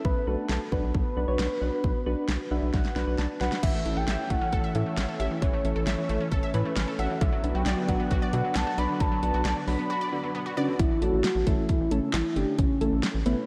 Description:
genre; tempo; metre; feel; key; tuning
synth-pop; 134 BPM; 4/4; straight; unclear; A4 = 440 Hz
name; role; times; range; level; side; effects
soft octave-layered synth lead; melody; 0.0-13.4 s; B3 to B5; -32 LUFS; equal; chorus, phaser, delay
rubbery square bass; bass; 0.0-13.3 s; G1 to B2; -32 LUFS; equal; none
pop drum kit; drums; 0.0-13.4 s; crash cymbal, handclaps, hi-hat, kick drum, snare drum; -32 LUFS; equal; none
soft electric-piano-like synth keys; accompaniment; 0.3-13.4 s; A3 to B5; -35 LUFS; equal; chorus, phaser
lush unison pad; sustained chords; 3.6-10.8 s; E3 to D4; -36 LUFS; equal; chorus
unison pluck; arpeggios; 3.6-10.8 s; D3 to E5; -38 LUFS; equal; delay
room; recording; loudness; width
moderate lush hall reverb, RT60 2.2 s; dreamy mix soaked in reverb; -27 LUFS; mono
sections
0.0-3.6 A section; 3.6-10.8 B section; 10.8-13.5 C section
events
synth keys fill 2.3-3.6; drum fill 2.7-3.6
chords
0.0 Bm; 3.6 A; 7.2 Bm; 10.8 A

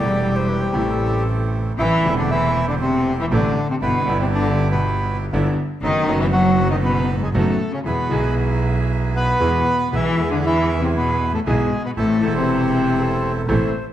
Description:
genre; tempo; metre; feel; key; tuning
tango; 118 BPM; 4/4; rubato; A minor; A4 = 440 Hz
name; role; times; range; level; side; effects
bandoneon; melody; 0.0-13.3 s; C3 to B4; -22 LUFS; equal; none
reedy concert flute; second line; 0.0-1.8, 13.0-13.9 s; A4 to D5; -28 LUFS; left 2 dB; none
warm cello; second line; 0.0-13.3 s; G#2 to G3; -23 LUFS; left 2 dB; none
clear concert grand piano; accompaniment; 0.0-13.7 s; E1 to A4; -24 LUFS; equal; none
bandoneon; stabs; 0.0-13.7 s; A3 to A4; -32 LUFS; right 5 dB; none
clear double bass; bass; 0.0-13.7 s; E1 to E2; -22 LUFS; right 2 dB; none
room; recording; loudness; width
moderate large studio reverb, RT60 1.2 s; none; -17 LUFS; side -12 dB against mid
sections
0.0-1.8 A section; 1.8-13.9 B section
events
none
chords
0.0 Am7; 3.8 Em7/G; 5.8 B7/F#; 7.9 E; 12.0 Am

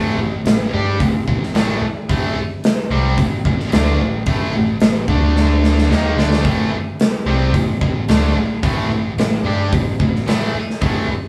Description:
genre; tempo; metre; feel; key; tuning
hard rock; 110 BPM; 4/4; straight; A minor; A4 = 440 Hz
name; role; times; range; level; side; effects
heavy high-gain guitar; riff; 0.0-11.1 s; A2 to G4; -26 LUFS; equal; distortion
overdriven semi-hollow guitar; riff; 0.0-11.1 s; A2 to G4; -24 LUFS; equal; none
overdriven picked electric bass; bass; 0.0-11.1 s; A1 to G2; -22 LUFS; equal; none
big rock drum kit; drums; 0.5-10.9 s; hi-hat, kick drum, snare drum; -21 LUFS; equal; none
room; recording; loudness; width
moderate stone room reverb, RT60 1.0 s; band playing live in one room, small room ambience; -17 LUFS; mono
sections
0.0-11.3 A section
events
drum fill 5.4-6.5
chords
0.0 Am; 5.1 D5; 5.9 Am

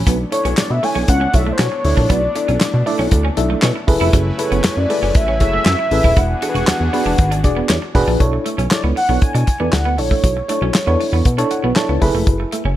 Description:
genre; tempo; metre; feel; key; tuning
early-eighties boogie funk; 118 BPM; 4/4; straight; unclear; A4 = 439 Hz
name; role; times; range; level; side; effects
FM electric piano with auto-pan; accompaniment; 0.0-12.6 s; D4 to B5; -21 LUFS; equal; none
brassy analog pad; sustained chords; 0.0-8.2 s; C#3 to G#5; -28 LUFS; left 1 dB; chorus
electric guitar at the edge of break-up; riff; 0.0-12.7 s; F#3 to F#4; -25 LUFS; right 4 dB; wide subtle chorus
chorused synth bass; bass; 0.0-12.7 s; D#1 to B2; -18 LUFS; equal; none
damped 70s drum kit; drums; 0.1-12.6 s; handclaps, hi-hat, kick drum, snare drum; -17 LUFS; equal; none
warm velvety synth lead; melody; 0.3-11.5 s; B#4 to G#5; -20 LUFS; equal; chorus, slapback echo
room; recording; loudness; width
light reverb; none; -14 LUFS; side -13 dB against mid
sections
0.0-8.2 A section; 8.2-12.8 B section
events
FM electric piano fill 11.3-12.3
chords
0.1 Bm11; 3.9 F#m11; 6.2 E9; 8.2 Bm11; 12.0 F#m11

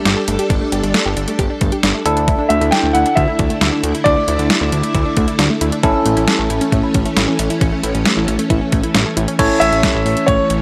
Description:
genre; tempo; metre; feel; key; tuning
synth-pop; 135 BPM; 4/4; straight; unclear; A4 = 440 Hz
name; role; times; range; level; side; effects
bell-like tine electric piano; accompaniment; 0.0-10.6 s; C#4 to C#5; -23 LUFS; equal; subtle chorus
string machine, violins; sustained chords; 0.0-10.6 s; D3 to A4; -24 LUFS; equal; ensemble chorus
unison pluck; arpeggios; 0.1-9.3 s; A3 to G4; -26 LUFS; equal; analog delay
fat analog bass; bass; 0.1-10.6 s; G1 to D2; -22 LUFS; equal; none
detuned 8-bit digital drum machine; drums; 0.1-10.6 s; crash cymbal, hi-hat, kick drum, snare drum; -20 LUFS; equal; overdrive
warm concert grand piano; melody; 2.5-5.3, 9.6-10.6 s; C#5 to G5; -19 LUFS; equal; none
room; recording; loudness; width
light reverb; dry, gritty hardware recording; -16 LUFS; mono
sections
0.0-9.4 A section; 9.4-10.6 B section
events
none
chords
0.0 Gsus2; 2.1 Dsus2; 5.8 A

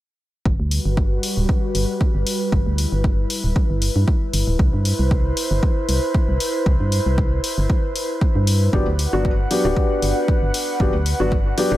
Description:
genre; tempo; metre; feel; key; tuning
deep house; 116 BPM; 4/4; swing 54% on 16ths; G major; A4 = 439 Hz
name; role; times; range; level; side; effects
airy breathy pad; sustained chords; 0.5-11.8 s; G3 to F#5; -26 LUFS; equal; chorus, sidechain pumping
organ-like FM bass; bass; 0.5-11.8 s; D1 to G2; -20 LUFS; equal; sidechain pumping
electronic kick drum; drums; 0.5-11.4 s; none; -19 LUFS; equal; overdrive, small room ambience
electronic hi-hat; drums; 0.7-11.7 s; none; -27 LUFS; left 3 dB; overdrive, small room ambience
felt-muted upright piano; stabs; 8.7-11.8 s; F#3 to G4; -21 LUFS; left 1 dB; sidechain pumping, tape echo
room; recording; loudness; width
little or no reverb; none; -17 LUFS; side -15 dB against mid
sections
0.5-11.8 A section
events
filter sweep on analog synth pad 0.5-11.8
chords
0.5 Gmaj7; 4.6 Cmaj7; 8.7 Gmaj7

